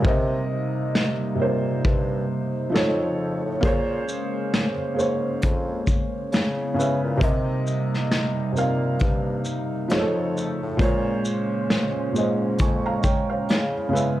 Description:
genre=lo-fi hip hop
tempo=67 BPM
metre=4/4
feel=swing 57% on 16ths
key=Bb dorian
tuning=A4 = 441 Hz
part: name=felt-muted upright piano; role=accompaniment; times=0.0-14.2 s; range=Bb2 to Db6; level=-24 LUFS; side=right 1 dB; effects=none
part: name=hollow soft pad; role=sustained chords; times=0.0-14.2 s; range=C3 to Fb4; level=-31 LUFS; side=left 1 dB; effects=chorus
part: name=warm bassoon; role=bass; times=0.0-14.2 s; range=F2 to Db3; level=-29 LUFS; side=left 1 dB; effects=none
part: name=vintage brush drum kit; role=drums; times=0.0-14.2 s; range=hi-hat, kick drum, shaker, snare drum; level=-23 LUFS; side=left 1 dB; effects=none
room=moderate studio reverb, RT60 0.6 s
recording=dark, warm production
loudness=-21 LUFS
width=side -14 dB against mid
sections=0.0-14.2 A section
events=break 0.0-3.6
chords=0.1 Cm7; 2.7 F7b13; 3.6 Bbm9; 6.3 Dbm7; 7.2 Cm7; 9.9 F7b13; 10.8 Bbm9; 13.5 Dbm7

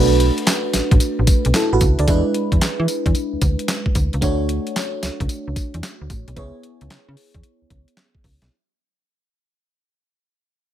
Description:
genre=R&B, new jack swing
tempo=112 BPM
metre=4/4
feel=swing 66% on 16ths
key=unclear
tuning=A4 = 440 Hz
part: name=FM electric piano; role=accompaniment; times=0.0-8.5 s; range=G#3 to D5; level=-22 LUFS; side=right 2 dB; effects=chorus, phaser
part: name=slap-like FM bass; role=bass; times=0.0-8.5 s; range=A1 to E3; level=-20 LUFS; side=equal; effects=none
part: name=boom bap sampler-style drum kit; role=drums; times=0.2-8.5 s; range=handclaps, hi-hat, kick drum, snare drum, tambourine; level=-19 LUFS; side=equal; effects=none
room=little or no reverb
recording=none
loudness=-16 LUFS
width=side -11 dB against mid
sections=0.0-8.5 A section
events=fade-out 0.0-8.5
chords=0.0 Bm7; 2.1 E7; 4.2 Dmaj7; 6.4 C#m7

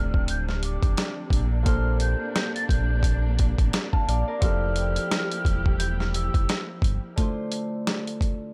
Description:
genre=hip hop, boom-bap hip-hop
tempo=87 BPM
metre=4/4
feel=swing 58% on 16ths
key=D minor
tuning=A4 = 440 Hz
part: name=breathy mellow jazz flute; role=melody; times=0.0-6.7 s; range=D6 to A6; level=-36 LUFS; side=equal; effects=high-pass filter, low-pass filter, digital delay
part: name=Celtic harp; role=accompaniment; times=0.0-8.5 s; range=Bb2 to A5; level=-34 LUFS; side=equal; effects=high-pass filter, low-pass filter
part: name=dark studio string section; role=sustained chords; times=0.0-7.1 s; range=C3 to G4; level=-38 LUFS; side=equal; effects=high-pass filter, low-pass filter
part: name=sub bass with octave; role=bass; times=0.0-7.0 s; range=D1 to Bb1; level=-28 LUFS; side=equal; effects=none
part: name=boom bap sampler-style drum kit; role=drums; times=0.1-8.4 s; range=hi-hat, kick drum, snare drum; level=-26 LUFS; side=equal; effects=none
room=small room ambience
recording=none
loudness=-25 LUFS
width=mono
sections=0.0-7.2 A section; 7.2-8.5 B section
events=none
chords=0.0 Dm9; 1.3 Bbmaj9; 4.4 Fmaj9; 7.2 Dm9

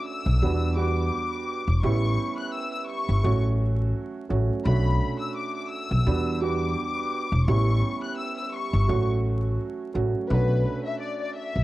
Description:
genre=hip hop, boom-bap hip-hop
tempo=85 BPM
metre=4/4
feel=swing 55% on 16ths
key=B minor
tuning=A4 = 440 Hz
part: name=warm studio violin section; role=melody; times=0.0-11.6 s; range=B4 to F#6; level=-31 LUFS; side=left 4 dB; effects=high-pass filter, low-pass filter, cassette tape, analog delay
part: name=dark upright piano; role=accompaniment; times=0.0-11.6 s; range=F#3 to F#4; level=-29 LUFS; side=right 4 dB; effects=cassette tape, high-pass filter, low-pass filter
part: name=upright bass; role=bass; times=0.3-11.6 s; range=E1 to E2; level=-23 LUFS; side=equal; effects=none
room=light reverb, small room ambience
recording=home recording on cassette, vinyl crackle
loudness=-23 LUFS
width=side -17 dB against mid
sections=0.0-10.3 A section; 10.3-11.6 B section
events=none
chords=0.4 Em7; 1.8 A7; 3.2 F#m/A; 4.7 Bm7; 6.1 Em7; 7.5 A7; 8.9 F#m/A; 10.3 Bm7

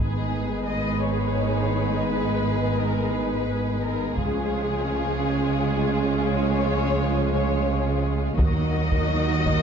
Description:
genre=cinematic, epic orchestral film score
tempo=57 BPM (dotted quarters)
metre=6/8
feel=straight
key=G# dorian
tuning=A4 = 440 Hz
part: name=dark symphonic violin section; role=melody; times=0.0-9.6 s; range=G#4 to D#5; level=-30 LUFS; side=left 4 dB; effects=none
part: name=rich studio violin section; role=second line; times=0.0-9.6 s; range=D#4 to B4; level=-31 LUFS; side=left 3 dB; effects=none
part: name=warm symphonic viola section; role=accompaniment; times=0.0-9.6 s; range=F#3 to D#4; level=-30 LUFS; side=equal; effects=none
part: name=mellow French horn section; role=sustained chords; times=0.0-9.6 s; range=D#3 to A#4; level=-31 LUFS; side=left 5 dB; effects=none
part: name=rich studio double bass section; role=bass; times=0.0-9.6 s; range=G#1 to D#2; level=-27 LUFS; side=right 4 dB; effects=none
part: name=rich symphonic cello section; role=bass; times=0.0-9.6 s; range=G#2 to D#3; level=-28 LUFS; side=right 4 dB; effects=none
part: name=timpani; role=percussion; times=0.0-1.0, 8.4-9.4 s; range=G#2 to D#3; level=-31 LUFS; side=left 2 dB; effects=none
part: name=taiko ensemble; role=drums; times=4.2-9.6 s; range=none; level=-26 LUFS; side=equal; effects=none
room=moderate scoring stage reverb, RT60 1.5 s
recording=dark, warm production, nothing above 7.7 kHz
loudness=-21 LUFS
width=side -7 dB against mid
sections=0.0-9.6 A section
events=none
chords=0.0 G#m; 4.2 C#; 8.4 D#m

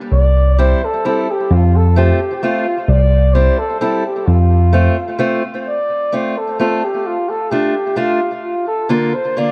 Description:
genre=alpine folk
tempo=130 BPM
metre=3/4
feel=straight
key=F major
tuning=A4 = 440 Hz
part: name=warm flugelhorn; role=melody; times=0.1-9.5 s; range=F4 to D5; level=-21 LUFS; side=equal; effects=tape echo
part: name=barky tine electric piano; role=bass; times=0.1-4.9 s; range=C2 to F2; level=-14 LUFS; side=equal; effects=none
part: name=fingerpicked acoustic archtop guitar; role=accompaniment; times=0.6-9.5 s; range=D3 to F4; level=-22 LUFS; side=equal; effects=tape echo
room=light reverb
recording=echo-heavy mix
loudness=-15 LUFS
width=mono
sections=0.0-5.7 A section; 5.7-9.5 A section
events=none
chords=0.1 C; 1.5 F; 2.9 C; 4.3 F; 7.1 Dm; 8.4 Bb

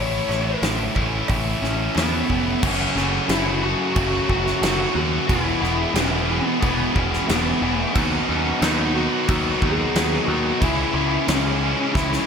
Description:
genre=classic rock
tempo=90 BPM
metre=4/4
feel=straight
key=unclear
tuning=A4 = 440 Hz
part: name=bluesy overdriven lead guitar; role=melody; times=0.0-12.3 s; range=B3 to C#5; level=-25 LUFS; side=left 1 dB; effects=distortion, slapback echo
part: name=distorted electric guitar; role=riff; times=0.0-12.3 s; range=F#2 to F#4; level=-26 LUFS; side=left 13 dB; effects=overdrive
part: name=distorted electric guitar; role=riff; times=0.0-12.3 s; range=E2 to G#4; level=-27 LUFS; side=right 13 dB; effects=overdrive
part: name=growling picked electric bass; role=bass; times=0.0-12.2 s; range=E1 to E2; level=-26 LUFS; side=equal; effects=overdrive
part: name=huge arena drum kit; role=drums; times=0.3-12.3 s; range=crash cymbal, hi-hat, kick drum, snare drum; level=-25 LUFS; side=equal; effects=none
part: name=cowbell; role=percussion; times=0.3-2.1 s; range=none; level=-34 LUFS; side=right 11 dB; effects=none
part: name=soft string machine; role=sustained chords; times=2.6-12.3 s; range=G#3 to C#5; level=-37 LUFS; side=equal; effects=none
part: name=raw garage guitar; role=riff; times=2.6-12.3 s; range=E2 to C#4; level=-29 LUFS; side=equal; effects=overdrive
room=studio reverb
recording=none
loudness=-18 LUFS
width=side -6 dB against mid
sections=0.0-2.6 A section; 2.6-12.3 B section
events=lead electric guitar solo 0.0-2.6; drum fill 12.0-12.3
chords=0.0 A; 2.6 F#m; 5.3 E; 8.0 B/D#; 10.6 C#m

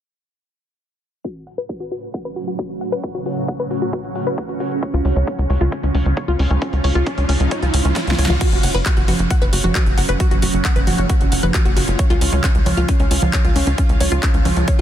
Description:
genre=uplifting trance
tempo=134 BPM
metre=4/4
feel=straight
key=F# harmonic minor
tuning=A4 = 440 Hz
part: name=shimmering ambient pad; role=sustained chords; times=2.0-14.8 s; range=G#2 to F#4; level=-24 LUFS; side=right 2 dB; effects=chorus, built-in reverb, phaser, vintage 12-bit sampler grit, sidechain pumping
part: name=wide unison pluck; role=arpeggios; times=1.2-14.8 s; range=C#4 to F#5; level=-25 LUFS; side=left 2 dB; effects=sidechain pumping, tape echo
part: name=big-room dance drum kit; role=drums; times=1.2-14.8 s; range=congas, crash cymbal, handclaps, hi-hat, snare drum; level=-23 LUFS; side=right 1 dB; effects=overdrive
part: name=electronic kick drum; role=drums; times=1.2-14.8 s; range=none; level=-19 LUFS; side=equal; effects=overdrive, high-pass filter on kick
part: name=riser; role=sound effects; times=5.8-8.4 s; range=none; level=-29 LUFS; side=right 3 dB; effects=none
part: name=tight sequencer bass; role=bass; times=4.9-14.8 s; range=F#1 to C#2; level=-18 LUFS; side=equal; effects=sidechain pumping
room=little or no reverb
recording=dense, heavily limited modern master, low-pass filter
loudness=-15 LUFS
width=side -11 dB against mid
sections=1.2-8.4 A section; 8.4-14.8 B section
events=filter sweep on synth arpeggio sound 1.2-8.4; filter sweep 1.2-8.4; riser 5.8-8.4; drum fill 8.0-8.4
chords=1.2 F#m; 4.8 C#; 8.4 F#m; 12.0 C#

